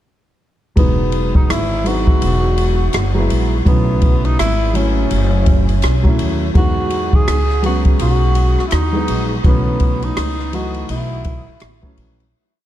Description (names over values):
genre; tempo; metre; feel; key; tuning
hip hop, jazz-hop; 83 BPM; 4/4; swing 60% on 16ths; E major; A4 = 442 Hz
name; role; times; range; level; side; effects
breathy tenor saxophone; melody; 0.8-11.9 s; B3 to G#4; -22 LUFS; equal; none
dark baby grand piano; accompaniment; 0.8-12.2 s; E3 to D#5; -21 LUFS; equal; none
upright bass; bass; 0.8-12.3 s; E1 to E2; -17 LUFS; equal; none
open jazz drum kit; drums; 0.8-12.3 s; hi-hat, kick drum, ride cymbal, rim click; -17 LUFS; equal; none
room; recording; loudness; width
light reverb, small room ambience; none; -13 LUFS; side -12 dB against mid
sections
0.8-12.3 head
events
fade-out 9.4-12.3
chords
0.8 Emaj9; 3.7 B9sus4; 6.6 Emaj9; 9.4 B9sus4